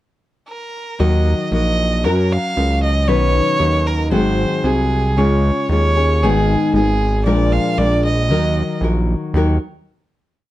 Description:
mexican folk, mariachi; 116 BPM; 2/4; straight; Eb minor; A4 = 440 Hz
clear violin; melody; 0.5-8.8 s; Ab4 to F5; -21 LUFS; right 2 dB
nylon-string guitar; accompaniment; 1.0-9.6 s; Ab2 to B4; -19 LUFS; left 2 dB
fat analog bass; bass; 1.0-9.6 s; Ab1 to Gb2; -17 LUFS; right 1 dB
moderate studio reverb, RT60 0.7 s; dark, warm production; -14 LUFS; side -15 dB against mid
0.0-1.0 pickup bar; 1.0-9.3 A section; 9.3-10.4 final chord
0.0 N.C.; 1.0 Ebm; 2.1 Gb; 3.1 Badd9; 4.1 Ab7; 5.2 Db; 6.2 Abm; 7.3 Bb7; 8.3 Ebm
0.48 | 1.00 1.53 | 2.05 2.57 | 3.08 3.60 | 4.12 4.64 | 5.17 5.70 | 6.22 6.74 | 7.26 7.78 | 8.29 8.81 | 9.34

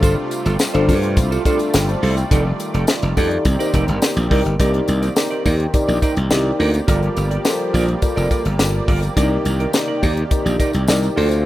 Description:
early-eighties boogie funk; 105 BPM; 4/4; straight; C dorian; A4 = 441 Hz
mellow FM electric piano; accompaniment; 0.0-11.5 s; D4 to C6; -22 LUFS; left 2 dB; chorus
brassy analog pad; sustained chords; 0.0-11.5 s; C3 to D5; -26 LUFS; right 2 dB; chorus
semi-hollow electric guitar; riff; 0.0-11.3 s; Eb4 to D5; -25 LUFS; right 4 dB; wide subtle chorus
glassy slap bass; bass; 0.0-11.5 s; F1 to G2; -18 LUFS; equal
tight funk drum kit; drums; 0.0-11.4 s; hi-hat, kick drum, snare drum; -19 LUFS; equal
tambourine; percussion; 0.0-11.4 s; -32 LUFS; left 2 dB
small room ambience; rough home demo mix; -15 LUFS; side -15 dB against mid
0.0-4.6 A section; 4.6-11.5 B section
0.0 G9sus4; 2.3 F13; 3.5 Cm9; 6.9 Gm7; 9.2 Cm9
| 0.03 0.60 1.17 1.74 | 2.31 2.88 3.46 4.03 | 4.60 5.17 5.74 6.31 | 6.88 7.46 8.03 8.60 | 9.17 9.74 10.31 10.88 | 11.46

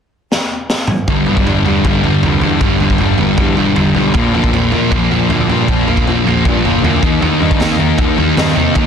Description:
punk rock; 156 BPM; 4/4; straight; A4 = 440 Hz
raw garage drum kit; drums; 0.3-8.8 s; kick drum, snare drum, toms; -16 LUFS; equal
sludgy distorted guitar; riff; 1.1-8.9 s; G2 to Eb4; -15 LUFS; left 12 dB; overdrive
sludgy distorted guitar; riff; 1.1-8.9 s; G2 to Eb4; -16 LUFS; right 10 dB; overdrive
fuzz picked electric bass; bass; 1.1-8.9 s; E1 to Eb3; -19 LUFS; equal; overdrive
little or no reverb; dense, heavily limited modern master; -11 LUFS; side -7 dB against mid
0.0-1.1 A section; 1.1-8.9 B section
drum fill 0.3-1.1
0.0 N.C.; 1.1 G5; 4.2 Bb; 7.0 Eb
0.32 0.70 | 1.08 1.47 1.85 2.23 | 2.62 3.00 3.38 3.77 | 4.15 4.54 4.92 5.30 | 5.69 6.07 6.46 6.84 | 7.23 7.61 8.00 8.38 | 8.76

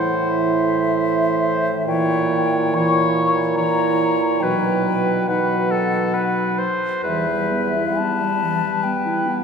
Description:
classical, slow romantic movement for wind quintet; 61-78 BPM; 3/4; rubato; E minor; A4 = 440 Hz
mellow hollow silver concert flute; melody; 0.0-9.4 s; E5 to C#6; -24 LUFS; left 4 dB
clear oboe; second line; 0.0-9.4 s; A4 to C#5; -23 LUFS; left 2 dB
dark French horn; accompaniment; 0.0-9.4 s; E3 to G3; -26 LUFS; left 1 dB
dark clarinet; accompaniment; 0.0-9.4 s; E3 to E4; -24 LUFS; right 5 dB
mellow bassoon; bass; 0.0-7.8 s; E2 to B2; -24 LUFS; right 3 dB
wet cathedral reverb, RT60 4.5 s; recorded in a church or concert hall; -17 LUFS; side -6 dB against mid
0.0-9.4 A section
0.0 Am; 1.9 A#dim7; 4.4 B; 7.0 Em
0.31 1.09 | 1.87 2.75 3.58 | 4.43 5.29 6.14 | 7.04 7.98 8.84

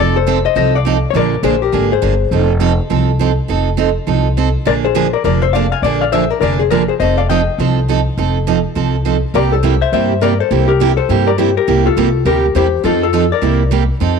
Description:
country; 205 BPM; 4/4; swing 61% on 8ths; F major; A4 = 440 Hz
vintage hollow-body jazz guitar; melody; 0.0-2.5, 4.7-13.7 s; F4 to Ab5; -16 LUFS; left 12 dB
picked steel-string acoustic guitar; accompaniment; 0.0-14.2 s; C3 to A4; -16 LUFS; right 12 dB
upright bass; bass; 0.0-14.2 s; F1 to G2; -16 LUFS; left 1 dB
light reverb, small room ambience; 1960s-style stereo with parts hard left and right; -12 LUFS; side -6 dB against mid
0.0-14.0 A section
0.0 F7; 1.1 Bb9; 2.3 F7; 4.7 Bb9; 7.0 F9; 9.3 C7; 12.8 F7; 13.4 C9
0.26 0.56 0.85 | 1.14 1.44 1.73 2.02 | 2.31 2.61 2.90 3.19 | 3.49 3.78 4.07 4.37 | 4.66 4.95 5.25 5.54 | 5.83 6.12 6.42 6.71 | 7.00 7.29 7.58 7.88 | 8.17 8.46 8.75 9.04 | 9.34 9.63 9.92 10.21 | 10.51 10.80 11.09 11.38 | 11.67 11.96 12.26 12.55 | 12.84 13.13 13.42 13.71 | 14.01

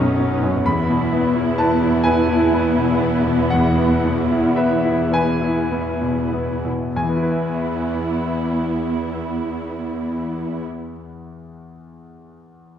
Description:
cinematic, emotional film score for orchestra; 32-44 BPM (dotted quarters); 6/8; rubato; E major; A4 = 440 Hz
bright grand piano; accompaniment; 0.0-12.8 s; B1 to B5; -21 LUFS; left 2 dB
warm symphonic viola section; accompaniment; 0.0-10.6 s; B3 to E4; -23 LUFS; right 3 dB
rich symphonic cello section; bass; 0.0-10.6 s; E2 to B2; -24 LUFS; equal
moderate concert hall reverb, RT60 1.9 s; -17 LUFS; side -9 dB against mid
0.0-7.0 A section; 7.0-10.7 B section
slowing down 0.0-7.0
0.0 Badd9; 0.7 E
| 0.65 2.04 | 3.51 5.13 | 6.96 8.83

